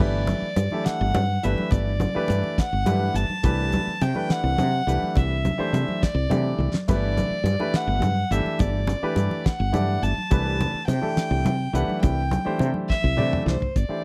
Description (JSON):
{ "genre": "electric jazz fusion", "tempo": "70 BPM (dotted quarters)", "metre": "6/8", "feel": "straight", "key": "G major", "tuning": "A4 = 440 Hz", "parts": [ { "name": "rich violin", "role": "melody", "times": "0.0-14.0 s", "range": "C5 to A5", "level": "-31 LUFS", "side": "equal", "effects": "slapback echo" }, { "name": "clear baby grand piano", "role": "accompaniment", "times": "0.0-14.0 s", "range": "E3 to D5", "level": "-31 LUFS", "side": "equal", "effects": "none" }, { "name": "woody fretless electric bass", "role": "bass", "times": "0.0-13.9 s", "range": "G1 to C3", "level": "-26 LUFS", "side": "equal", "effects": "none" }, { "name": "damped 70s drum kit", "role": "drums", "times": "0.0-13.9 s", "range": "crash cymbal, hi-hat, kick drum, snare drum, toms", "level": "-26 LUFS", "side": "equal", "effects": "none" }, { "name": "congas", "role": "percussion", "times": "0.3-13.7 s", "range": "none", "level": "-31 LUFS", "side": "equal", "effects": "none" } ], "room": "little or no reverb", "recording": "dry, close 1970s-style studio recording", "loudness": "-23 LUFS", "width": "mono", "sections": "0.0-13.8 A section", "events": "drum fill 6.6, 12.9-13.8", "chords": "0.0 Gmaj9; 3.4 Cmaj9; 6.9 Gmaj9; 10.3 Cmaj9" }